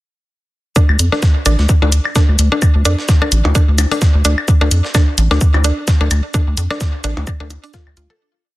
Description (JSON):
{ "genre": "minimal techno", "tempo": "129 BPM", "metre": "4/4", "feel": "swing 56% on 16ths", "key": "D minor", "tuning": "A4 = 441 Hz", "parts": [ { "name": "mallet-like synth pluck", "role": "riff", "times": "0.8-8.2 s", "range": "D4 to A4", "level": "-21 LUFS", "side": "equal", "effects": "chorus, sidechain pumping, tape echo" }, { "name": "breakbeat sampler-style drum kit", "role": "drums", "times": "0.8-8.1 s", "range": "hi-hat, shaker, snare drum", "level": "-26 LUFS", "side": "equal", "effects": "sidechain pumping on perc, high-pass filter on perc, high-pass filter on snare, sidechain pumping on hats, high-pass filter on hats, high-pass filter on room" }, { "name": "electronic kick drum", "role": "drums", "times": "0.8-7.8 s", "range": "none", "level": "-12 LUFS", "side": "equal", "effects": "none" }, { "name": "percussion blips and claves", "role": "percussion", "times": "0.8-8.2 s", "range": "none", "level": "-23 LUFS", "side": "left 3 dB", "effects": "dub echo" }, { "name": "rubbery square bass", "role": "bass", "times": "0.9-8.1 s", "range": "A1 to F2", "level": "-14 LUFS", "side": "equal", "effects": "sidechain pumping" }, { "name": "electronic hi-hat", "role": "drums", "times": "1.0-8.1 s", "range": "none", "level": "-18 LUFS", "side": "equal", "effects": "none" } ], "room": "little or no reverb", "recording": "dense, heavily limited modern master", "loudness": "-12 LUFS", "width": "side -18 dB against mid", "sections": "0.8-8.2 groove", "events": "fade-out 5.7-8.2", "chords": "none" }